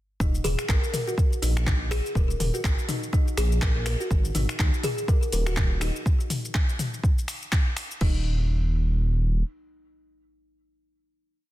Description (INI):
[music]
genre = afro house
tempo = 123 BPM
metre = 4/4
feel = swing 57% on 16ths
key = Eb minor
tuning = A4 = 439 Hz
[part]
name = kalimba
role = arpeggios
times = 0.2-8.2 s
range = Eb4 to Bb4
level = -32 LUFS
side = left 1 dB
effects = sidechain pumping, ping-pong delay
[part]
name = dark detuned saw bass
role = bass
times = 0.2-9.4 s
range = Eb1 to Eb2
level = -25 LUFS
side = equal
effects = sidechain pumping
[part]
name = deep house drum kit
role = drums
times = 0.2-8.1 s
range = crash cymbal, finger snaps, handclaps, hi-hat, shaker, toms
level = -31 LUFS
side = left 2 dB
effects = small room ambience
[part]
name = electronic kick drum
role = drums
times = 0.2-8.1 s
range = none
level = -23 LUFS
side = equal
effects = small room ambience
[sound]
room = little or no reverb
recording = dense, heavily limited modern master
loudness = -22 LUFS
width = side -15 dB against mid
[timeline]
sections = 0.2-8.0 drop; 8.0-11.5 final note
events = drop 0.2-8.0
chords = 0.2 Eb5; 8.0 N.C.